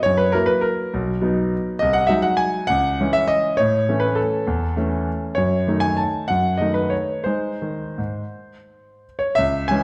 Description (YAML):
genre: classical, piano waltz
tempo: 162-215 BPM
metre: 3/4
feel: rubato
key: unclear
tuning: A4 = 438 Hz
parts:
  - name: clear grand piano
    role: solo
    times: 0.0-9.8 s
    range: B1 to A5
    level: -21 LUFS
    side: equal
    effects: none
room: wet recital hall reverb, RT60 1.5 s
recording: dark, warm production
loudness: -21 LUFS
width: mono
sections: 0.0-9.4 A section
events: none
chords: 0.1 F#7; 0.9 B; 1.8 G#7/B#; 2.7 C#m; 3.6 A; 5.4 D#m7b5/F#; 7.3 G#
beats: | 0.06 0.35 0.65 | 0.94 1.23 1.52 | 1.82 2.10 2.40 | 2.70 3.00 3.30 | 3.59 3.88 4.18 | 4.48 4.77 5.07 | 5.38 5.68 6.00 | 6.30 6.61 6.92 | 7.26 7.62 7.99 | 8.34 8.68 9.04 | 9.39 9.72